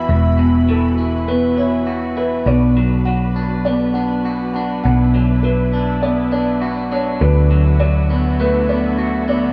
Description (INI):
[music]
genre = rock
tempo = 101 BPM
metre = 4/4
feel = straight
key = unclear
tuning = A4 = 440 Hz
[part]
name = muted studio string section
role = sustained chords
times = 0.0-9.5 s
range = D3 to B5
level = -31 LUFS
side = equal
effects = none
[part]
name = electric guitar through a small old amp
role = arpeggios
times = 0.0-9.5 s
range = E2 to F#4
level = -20 LUFS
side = equal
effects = spring reverb
[part]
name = felt-muted upright piano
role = arpeggios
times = 0.0-9.5 s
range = A4 to F#5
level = -25 LUFS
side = equal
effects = none
[part]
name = hollow-body short-scale picked electric bass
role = bass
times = 0.0-9.5 s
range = E1 to D2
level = -20 LUFS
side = equal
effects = none
[sound]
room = moderate large studio reverb, RT60 0.9 s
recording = band playing live in one room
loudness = -17 LUFS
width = mono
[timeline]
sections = 0.0-9.5 A section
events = none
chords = 0.0 Esus2; 2.5 Bm; 7.2 D6